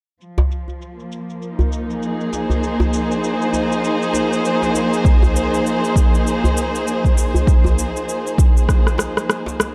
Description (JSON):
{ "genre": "organic downtempo", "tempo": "99 BPM", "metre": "4/4", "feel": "swing 59% on 16ths", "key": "unclear", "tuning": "A4 = 440 Hz", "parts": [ { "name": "rich chamber string section", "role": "sustained chords", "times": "0.2-9.7 s", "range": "F3 to C5", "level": "-22 LUFS", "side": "equal", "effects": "sidechain pumping" }, { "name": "electronic cabasa and rim click", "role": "drums", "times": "0.2-9.7 s", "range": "none", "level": "-27 LUFS", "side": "equal", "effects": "low-pass filter on perc, low-pass filter on snare" }, { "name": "djembe", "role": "percussion", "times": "0.4-9.7 s", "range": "none", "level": "-23 LUFS", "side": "equal", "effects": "none" }, { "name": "electronic kick drum", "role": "drums", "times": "5.0-8.8 s", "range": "none", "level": "-16 LUFS", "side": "equal", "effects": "none" } ], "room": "light reverb, studio ambience", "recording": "dark, warm production", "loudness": "-18 LUFS", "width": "mono", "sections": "0.2-9.7 A section", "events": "filter sweep on drum 0.2-9.7; drum fill 8.7-9.7", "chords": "0.2 Ab" }